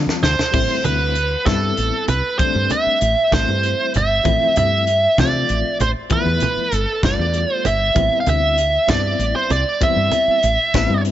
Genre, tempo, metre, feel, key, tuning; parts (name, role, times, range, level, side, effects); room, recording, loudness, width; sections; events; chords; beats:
electric jazz fusion; 65 BPM (dotted quarters); 6/8; straight; A4 = 440 Hz
barky reed electric piano; accompaniment; 0.0-11.1 s; F3 to F4; -26 LUFS; left 11 dB; overdrive, fast tremolo
woody fretless electric bass; bass; 0.0-11.1 s; G1 to C3; -21 LUFS; equal
crisp fusion drum kit; drums; 0.1-11.1 s; crash cymbal, hi-hat, kick drum, snare drum; -24 LUFS; left 1 dB
congas; percussion; 0.1-10.9 s; -25 LUFS; right 4 dB
biting lead guitar; melody; 0.2-11.0 s; A4 to F5; -18 LUFS; right 2 dB; overdrive
light reverb; nothing above 7.7 kHz; -15 LUFS; side -12 dB against mid
0.5-11.1 A section
drum fill 0.0-0.5
0.0 Dm11; 0.5 Am9; 4.3 Dm9/A; 6.1 G13; 8.0 Am9
| 0.55 1.47 | 2.40 3.33 | 4.26 5.18 | 6.11 7.04 | 7.97 8.90 | 9.82 10.75